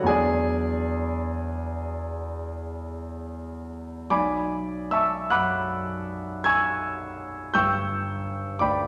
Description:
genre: classical, impressionist solo piano.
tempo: 42-57 BPM (dotted quarters).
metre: 9/8.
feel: rubato.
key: B dorian.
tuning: A4 = 439 Hz.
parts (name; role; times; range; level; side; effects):
clear concert grand piano; solo; 0.0-8.9 s; G1 to G#6; -27 LUFS; equal; none.
room: wet recital hall reverb, RT60 1.6 s.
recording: none.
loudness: -27 LUFS.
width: mono.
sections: 0.0-4.1 A section; 4.1-8.9 B section.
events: none.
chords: 0.1 E9; 4.1 Bm9; 7.5 G.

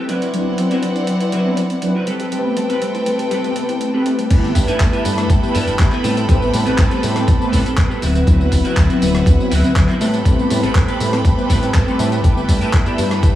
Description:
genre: nu-disco, nu disco.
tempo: 121 BPM.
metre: 4/4.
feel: straight.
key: A dorian.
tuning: A4 = 439 Hz.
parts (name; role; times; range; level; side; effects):
clear studio violin section; sustained chords; 0.0-13.4 s; C4 to B5; -26 LUFS; equal; vintage 12-bit sampler grit, sidechain pumping.
clean electric guitar; riff; 0.0-13.1 s; C4 to D5; -25 LUFS; equal; analog chorus, vintage 12-bit sampler grit, analog delay.
soft round pluck; arpeggios; 0.1-13.3 s; F#3 to G4; -24 LUFS; right 1 dB; chorus, sidechain pumping, analog delay.
dusty soul sampler-style drum kit; drums; 0.1-13.3 s; crash cymbal, handclaps, hi-hat, rim click, tambourine; -26 LUFS; equal; overdrive.
mellow synth brass; accompaniment; 0.3-13.3 s; F#3 to B4; -21 LUFS; left 1 dB; chorus, phaser, analog delay.
fat analog bass; bass; 4.3-13.3 s; D1 to A2; -18 LUFS; equal; none.
electronic kick drum; drums; 4.3-13.3 s; none; -15 LUFS; equal; overdrive.
room: light reverb, digital ambience.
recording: echo-heavy mix, studio ambience.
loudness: -14 LUFS.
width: side -13 dB against mid.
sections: 0.0-4.3 A section; 4.3-13.4 B section.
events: filter sweep on synth arpeggio sound 0.0-4.3; drop 4.3-13.4.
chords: 0.1 D13; 2.1 Am9; 4.3 G69; 6.0 Am9; 8.0 D13; 10.0 Am9; 12.2 G69.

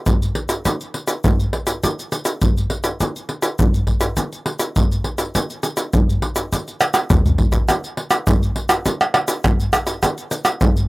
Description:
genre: samba.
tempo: 102 BPM.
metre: 4/4.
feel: straight.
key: none.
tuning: none.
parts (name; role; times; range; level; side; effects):
egg shaker, surdo, pandeiro and tamborim; percussion; 0.1-10.9 s; none; -17 LUFS; equal; none.
room: little or no reverb.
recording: recorded outdoors, with no room sound.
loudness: -17 LUFS.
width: side -21 dB against mid.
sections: 0.0-7.7 A section; 7.7-10.9 B section.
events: drum fill 6.8-7.7.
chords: none.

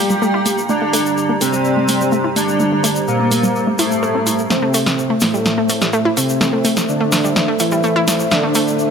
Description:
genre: melodic techno.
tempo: 126 BPM.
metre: 4/4.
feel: straight.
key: A phrygian.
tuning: A4 = 444 Hz.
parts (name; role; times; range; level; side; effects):
soft supersaw; melody; 0.0-8.9 s; A2 to G4; -18 LUFS; equal; low-pass filter, ping-pong delay.
airy dreamy lead; second line; 0.0-4.4 s; A2 to G3; -23 LUFS; equal; chorus, digital delay.
dark analog pad; sustained chords; 0.0-8.9 s; G3 to Bb5; -22 LUFS; right 2 dB; chorus.
wide unison pluck; arpeggios; 0.0-8.6 s; G3 to A4; -20 LUFS; equal; cassette tape, digital delay.
egg shaker; percussion; 0.1-8.9 s; none; -26 LUFS; left 4 dB; none.
punchy analog drum machine; drums; 0.5-8.7 s; hi-hat, snare drum; -20 LUFS; right 1 dB; none.
room: moderate huge ambient reverb, RT60 4.6 s.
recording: none.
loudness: -14 LUFS.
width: side -6 dB against mid.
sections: 0.0-4.5 A section; 4.5-8.9 B section.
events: build-up 4.5-8.9; drum fill 4.5-8.9; filter sweep on supersaw synth 4.5-8.9.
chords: 0.0 Bb; 0.7 Gm; 4.5 Am.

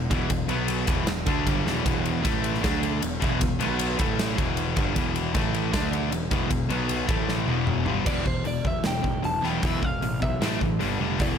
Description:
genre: hard rock.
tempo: 155 BPM.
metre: 4/4.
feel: straight.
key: E minor.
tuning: A4 = 440 Hz.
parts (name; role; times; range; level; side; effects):
distorted electric guitar; riff; 0.0-11.4 s; E2 to D4; -29 LUFS; left 12 dB; overdrive.
overdriven semi-hollow guitar; riff; 0.0-11.4 s; E2 to D4; -30 LUFS; right 10 dB; none.
fuzz picked electric bass; bass; 0.0-11.4 s; E1 to D2; -30 LUFS; equal; overdrive.
huge arena drum kit; drums; 0.1-11.3 s; crash cymbal, hi-hat, kick drum, ride cymbal, snare drum, toms; -27 LUFS; equal; none.
lightly driven lead guitar; melody; 8.1-11.3 s; C5 to A5; -31 LUFS; left 1 dB; tape echo.
room: light reverb.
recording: none.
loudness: -23 LUFS.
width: side -8 dB against mid.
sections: 0.0-8.1 A section; 8.1-11.4 B section.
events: drum fill 1.7, 7.3-8.1.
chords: 0.5 B5; 0.9 Em; 2.2 A5; 2.6 D5; 3.0 E5; 3.6 B5; 4.0 A5; 4.4 Em; 5.3 A5; 5.7 D5; 6.1 E5; 6.7 B5; 7.1 A5; 7.5 Em; 10.4 A5; 10.8 G5.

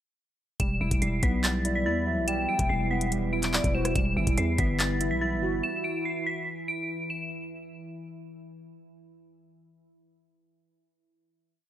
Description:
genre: hip hop, drill.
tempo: 143 BPM.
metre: 4/4.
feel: half-time.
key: E minor.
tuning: A4 = 440 Hz.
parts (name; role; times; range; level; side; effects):
dark detuned synth bell; melody; 0.6-7.3 s; A6 to E7; -32 LUFS; equal; chorus.
warbly lo-fi synth keys; accompaniment; 0.6-6.5 s; F#3 to F#4; -31 LUFS; right 1 dB; chorus.
deep dark ambient pad; sustained chords; 1.5-7.3 s; E3 to E4; -37 LUFS; equal; chorus, built-in reverb.
growling 808-style bass; bass; 0.6-5.6 s; E1 to E2; -29 LUFS; equal; none.
drill drum kit; drums; 0.6-5.1 s; handclaps, hi-hat, kick drum, rim click; -28 LUFS; equal; none.
hollow clarinet-like synth lead; second line; 1.6-3.9 s; C5 to G5; -33 LUFS; left 2 dB; chorus, digital delay.
room: digital ambience.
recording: none.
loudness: -25 LUFS.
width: side -12 dB against mid.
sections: 0.6-7.3 hook.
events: none.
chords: 0.6 Emadd9.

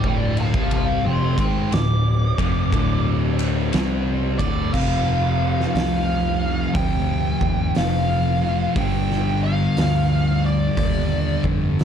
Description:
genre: stoner and doom metal.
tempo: 60 BPM.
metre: 4/4.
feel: swing 66% on 8ths.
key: unclear.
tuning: A4 = 440 Hz.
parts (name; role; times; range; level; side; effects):
fuzz lead guitar; melody; 0.0-11.4 s; D5 to D6; -26 LUFS; right 1 dB; wah, distortion, slapback echo.
cranked stack guitar; riff; 0.0-11.8 s; D2 to C4; -29 LUFS; left 2 dB; overdrive.
thick fuzz guitar; riff; 0.0-11.8 s; D2 to C4; -25 LUFS; left 8 dB; distortion.
thick fuzz guitar; riff; 0.0-11.8 s; D2 to C4; -25 LUFS; right 8 dB; distortion.
picked electric bass; bass; 0.0-11.8 s; D1 to F2; -25 LUFS; equal; tube saturation.
oversized low-tuned drum kit; drums; 0.0-11.8 s; crash cymbal, hi-hat, kick drum, ride cymbal, snare drum; -25 LUFS; equal; none.
room: light reverb, studio reverb.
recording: dark, warm production.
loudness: -18 LUFS.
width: side -8 dB against mid.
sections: 0.0-4.7 A section; 4.7-11.8 B section.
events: lead electric guitar solo 0.0-4.7.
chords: 0.0 Dm; 4.7 F5; 8.8 G5.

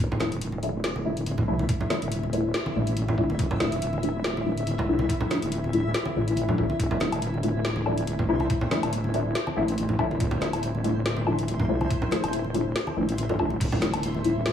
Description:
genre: deep dubstep.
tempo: 141 BPM.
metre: 4/4.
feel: swing 55% on 16ths, half-time.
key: D minor.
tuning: A4 = 441 Hz.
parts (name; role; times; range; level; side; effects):
wobble bass; bass; 0.0-14.5 s; D1 to C2; -28 LUFS; equal; chorus.
backwards swelling texture; texture; 1.0-14.5 s; A3 to E5; -34 LUFS; left 1 dB; built-in reverb, lush chorus.
congas; percussion; 0.1-14.2 s; none; -32 LUFS; right 1 dB; dub echo.
filtered dub chord stab; stabs; 0.2-14.3 s; F3 to E4; -29 LUFS; left 2 dB; phaser, ensemble chorus, dub echo.
garage drum kit; drums; 0.2-14.5 s; crash cymbal, hi-hat, snare drum, woodblock; -31 LUFS; left 1 dB; none.
electronic kick drum; drums; 1.4-13.7 s; none; -28 LUFS; equal; none.
room: wet plate reverb, RT60 1.0 s.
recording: dreamy mix soaked in reverb, small room ambience.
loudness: -24 LUFS.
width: side -9 dB against mid.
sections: 0.0-14.5 A section.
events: none.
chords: 0.0 Dmadd9.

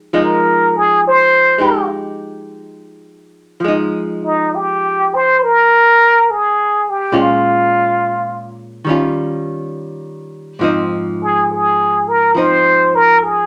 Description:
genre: jazz ballad.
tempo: 69 BPM.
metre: 4/4.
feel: swing 67% on 8ths.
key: F minor.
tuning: A4 = 441 Hz.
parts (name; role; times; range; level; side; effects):
archtop guitar, miked and amplified; accompaniment; 0.0-13.5 s; Ab2 to G4; -21 LUFS; equal; none.
trumpet with plunger mute; melody; 0.2-13.5 s; Eb4 to C5; -13 LUFS; equal; none.
room: moderate studio reverb, RT60 0.5 s.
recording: none.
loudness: -14 LUFS.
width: mono.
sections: 0.0-3.6 A section; 3.6-13.5 B section.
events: muted trumpet solo 0.0-3.6.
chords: 0.0 Fm9; 3.6 Fm7; 7.1 Bbm7; 8.9 Eb9; 10.6 Ab6.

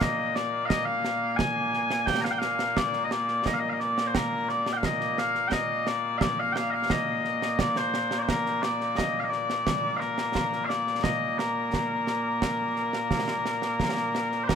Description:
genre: scottish traditional, Scottish pipe music.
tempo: 87 BPM.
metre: 4/4.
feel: straight.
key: Bb major.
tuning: A4 = 440 Hz.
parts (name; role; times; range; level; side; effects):
mellow small bagpipes; melody; 0.0-14.6 s; Bb2 to Bb5; -26 LUFS; left 2 dB; none.
concert snare drum and concert bass drum; drums; 0.0-14.6 s; none; -31 LUFS; right 4 dB; none.
room: light reverb.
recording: minimal, uncompressed stereo recording.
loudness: -24 LUFS.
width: side -7 dB against mid.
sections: 0.0-14.5 A section.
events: none.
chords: none.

